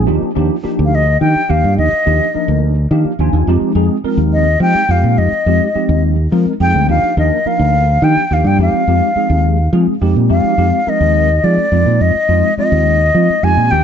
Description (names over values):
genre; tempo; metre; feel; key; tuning
electric jazz fusion; 70 BPM (dotted quarters); 6/8; straight; F dorian; A4 = 440 Hz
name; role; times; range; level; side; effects
tine electric piano; accompaniment; 0.0-13.8 s; F3 to Ab5; -17 LUFS; equal; slow stereo tremolo, ensemble chorus
fingered electric bass; bass; 0.0-13.8 s; D2 to F3; -13 LUFS; right 1 dB; none
concert flute; melody; 0.9-13.8 s; D5 to Ab5; -15 LUFS; left 2 dB; slapback echo
room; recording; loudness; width
light reverb; nothing above 7.8 kHz; -11 LUFS; side -8 dB against mid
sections
0.0-10.3 A section; 10.3-13.8 A section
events
tine electric piano fill 2.6-3.5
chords
0.1 Ebmaj9; 3.5 Fm7; 6.9 Ebmaj9; 8.6 Fm9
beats
| 0.07 0.93 | 1.78 2.63 | 3.48 4.33 | 5.18 6.03 | 6.89 7.74 | 8.59 9.45 | 10.30 11.15 | 12.01 12.86 | 13.72